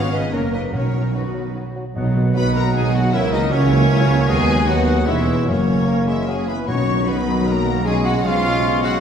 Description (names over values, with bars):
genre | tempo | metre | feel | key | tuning
classical, dramatic, fast romantic movement for symphony orchestra | 153 BPM | 3/4 | rubato | B major | A4 = 439 Hz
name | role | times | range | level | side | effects
rich studio violin section | melody | 0.0-9.0 s | B3 to C#6 | -29 LUFS | left 5 dB | none
flute section | second line | 0.0-8.9 s | F#4 to C#6 | -29 LUFS | left 3 dB | none
rich symphonic violin section | second line | 0.0-8.9 s | C#4 to E#5 | -31 LUFS | left 1 dB | none
warm clarinet | second line | 0.0-9.0 s | C#4 to D#5 | -29 LUFS | left 3 dB | none
warm oboe | second line | 0.0-9.0 s | F#4 to F#5 | -33 LUFS | equal | none
mellow bassoon | accompaniment | 0.0-9.0 s | E3 to B3 | -28 LUFS | left 1 dB | none
warm symphonic viola section | accompaniment | 0.0-9.0 s | F#3 to F#4 | -26 LUFS | equal | none
dark French horn section | sustained chords | 0.0-9.0 s | C#3 to E#4 | -27 LUFS | left 2 dB | none
warm trombone section | sustained chords | 0.0-9.0 s | C#3 to B3 | -28 LUFS | right 1 dB | none
clear chamber double bass section | bass | 0.0-9.0 s | E1 to D#2 | -24 LUFS | right 2 dB | none
rich symphonic cello section | bass | 0.0-9.0 s | D#2 to A#4 | -24 LUFS | right 2 dB | none
timpani | percussion | 0.7-2.5, 5.5-7.2 s | F#2 to B2 | -26 LUFS | equal | none
warm tuba | bass | 2.0-9.0 s | E1 to D#2 | -25 LUFS | right 1 dB | none
mellow trumpet | stabs | 2.4-9.0 s | C#4 to C#5 | -26 LUFS | right 1 dB | none
room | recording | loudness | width
wet scoring stage reverb, RT60 1.5 s | heard from further back in the room | -16 LUFS | side -8 dB against mid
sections
0.0-2.0 A section; 2.0-9.0 A section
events
none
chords
0.3 F#; 0.7 B; 3.1 F#7/C#; 4.3 B/D#; 5.1 C#m7/E; 5.5 F#; 6.7 B; 7.9 C#7/B